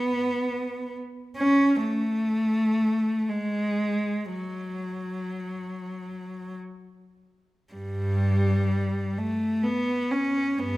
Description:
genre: classical, free, expressive piece for unaccompanied cello.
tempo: 47-68 BPM.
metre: 3/4.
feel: rubato.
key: unclear.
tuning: A4 = 441 Hz.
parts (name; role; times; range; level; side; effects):
rich cello; solo; 0.0-10.8 s; G2 to C#4; -24 LUFS; equal; none.
room: wet recital hall reverb, RT60 1.7 s.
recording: none.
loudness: -24 LUFS.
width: side -18 dB against mid.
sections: 0.0-10.8 A section.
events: none.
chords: none.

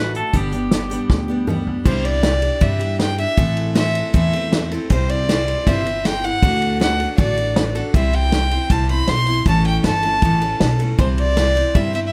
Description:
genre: honky-tonk and classic country.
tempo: 158 BPM.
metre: 4/4.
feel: straight.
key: unclear.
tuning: A4 = 440 Hz.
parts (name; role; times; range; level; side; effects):
twangy electric guitar; second line; 0.0-1.7 s; G4 to B4; -30 LUFS; equal; tape echo.
picked steel-string acoustic guitar; accompaniment; 0.0-12.1 s; G2 to C5; -26 LUFS; equal; none.
upright bass; bass; 0.0-12.1 s; G1 to G2; -24 LUFS; equal; none.
unplugged drum kit; drums; 0.1-12.0 s; crash cymbal, hi-hat, kick drum, ride cymbal, snare drum, toms; -23 LUFS; equal; none.
clear fiddle; melody; 1.9-12.1 s; C5 to C6; -24 LUFS; equal; none.
room: little or no reverb.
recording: none.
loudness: -18 LUFS.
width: mono.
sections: 0.0-1.9 A section; 1.9-12.1 B section.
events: clean electric guitar solo 0.0-1.9; drum fill 1.1-1.9.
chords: 0.3 G; 1.9 Cadd9; 3.4 Am; 4.9 C; 6.4 D; 7.9 C; 9.5 A; 11.0 C.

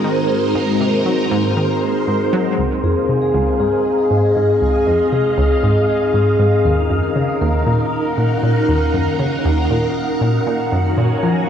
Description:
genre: ambient, sequencer-driven space music.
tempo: 118 BPM.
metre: 4/4.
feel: straight.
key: Eb dorian.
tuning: A4 = 440 Hz.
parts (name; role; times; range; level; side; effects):
string machine, full ensemble; sustained chords; 0.0-11.5 s; Ab3 to Ab5; -19 LUFS; right 1 dB; phaser, ensemble chorus.
vibraphone with medium mallets; arpeggios; 0.0-11.5 s; C4 to Gb5; -19 LUFS; left 2 dB; auto-pan, ping-pong delay.
analog pluck; riff; 0.0-11.4 s; Db2 to Gb3; -18 LUFS; equal; chorus, ping-pong delay.
room: wet scoring stage reverb, RT60 2.0 s.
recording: none.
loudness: -14 LUFS.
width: side -8 dB against mid.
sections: 0.0-11.5 A section.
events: none.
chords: 0.0 Ab7; 2.6 Dbmaj7; 6.7 Ebm7; 10.7 Gbmaj7.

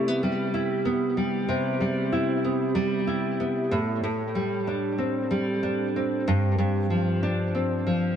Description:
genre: indie pop.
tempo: 94 BPM.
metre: 4/4.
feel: swing 55% on 16ths.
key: C major.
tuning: A4 = 443 Hz.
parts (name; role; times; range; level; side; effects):
nylon-string guitar; solo; 0.0-8.2 s; G2 to E4; -23 LUFS; equal; wide subtle chorus, vibrato effect, tape echo.
room: moderate plate reverb, RT60 2.7 s.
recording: dark, warm production.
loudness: -23 LUFS.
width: side -8 dB against mid.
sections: 0.0-8.2 A section.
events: none.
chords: 0.0 Cmaj7; 3.7 Am7; 6.3 G7sus4.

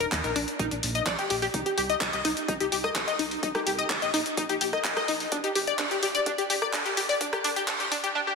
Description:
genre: progressive house.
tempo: 127 BPM.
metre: 4/4.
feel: straight.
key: unclear.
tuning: A4 = 440 Hz.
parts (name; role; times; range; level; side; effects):
tight sequenced synth; arpeggios; 0.0-8.3 s; D4 to Eb5; -27 LUFS; left 2 dB; chorus, cassette tape, sidechain pumping, digital delay.
round analog bass; bass; 0.0-8.0 s; F1 to G2; -39 LUFS; right 1 dB; sidechain pumping.
deep house drum kit; drums; 0.0-8.1 s; handclaps, hi-hat, rim click; -29 LUFS; equal; overdrive, sidechain pumping on hats, soft clipping on snare.
electronic kick drum; drums; 0.1-7.8 s; none; -36 LUFS; right 1 dB; overdrive, high-pass filter on kick, high-pass filter on room.
room: wet lush hall reverb, RT60 2.2 s.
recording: dense, heavily limited modern master, high-pass filter.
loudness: -24 LUFS.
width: side -4 dB against mid.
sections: 0.0-8.3 A section.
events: build-up 0.0-8.3.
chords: 0.0 Eb5; 1.5 Cm; 5.3 G5.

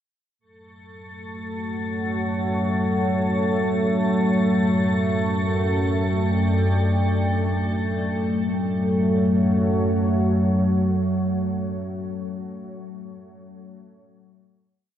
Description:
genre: dark ambient drone.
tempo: free time.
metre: none.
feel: none.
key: F# minor.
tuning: A4 = 445 Hz.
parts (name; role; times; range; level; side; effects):
deep dark ambient pad; sustained chords; 1.4-12.1 s; F#2 to G5; -24 LUFS; equal; chorus, built-in reverb.
deep rumbling drone; drone; 1.5-11.8 s; F#2 to F#3; -24 LUFS; equal; built-in reverb.
icy glass pad; texture; 0.9-8.1 s; A3 to A4; -30 LUFS; equal; chorus, built-in reverb.
room: wet huge ambient reverb, RT60 7.3 s.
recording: dark, warm production.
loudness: -20 LUFS.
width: side -10 dB against mid.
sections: 0.4-8.1 A section; 8.1-11.9 final chord.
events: none.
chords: 0.4 F#m; 4.2 Dsus4/F#; 8.1 F#m.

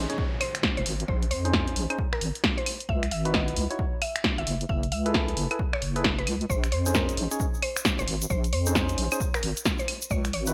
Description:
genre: UK garage, two-step garage.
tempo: 133 BPM.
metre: 4/4.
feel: swing 62% on 16ths.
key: unclear.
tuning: A4 = 442 Hz.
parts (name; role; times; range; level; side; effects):
percussive organ stab; stabs; 0.0-10.5 s; Db4 to Db5; -34 LUFS; equal; chorus, digital delay.
deep soft wobble bass; bass; 0.0-10.5 s; F1 to F2; -31 LUFS; equal; chorus, sidechain pumping.
downlifter; sound effects; 0.0-2.9 s; none; -44 LUFS; equal; none.
punchy analog drum machine; drums; 0.1-10.5 s; claves, finger snaps, hi-hat, snare drum; -30 LUFS; equal; small room ambience, gated reverb.
electronic kick drum; drums; 0.2-10.2 s; none; -33 LUFS; equal; small room ambience.
mallet-like synth pluck; melody; 0.4-10.5 s; Bb4 to Fb5; -37 LUFS; equal; chorus, digital delay.
egg shaker; percussion; 6.5-10.5 s; none; -37 LUFS; equal; none.
room: light reverb, digital ambience.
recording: bright 1980s-style digital production.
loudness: -27 LUFS.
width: mono.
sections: 0.0-10.5 A section.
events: none.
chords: 0.0 Bbm11 (rootless); 2.9 Dbm11; 4.5 Gbm11; 6.5 Bbm11.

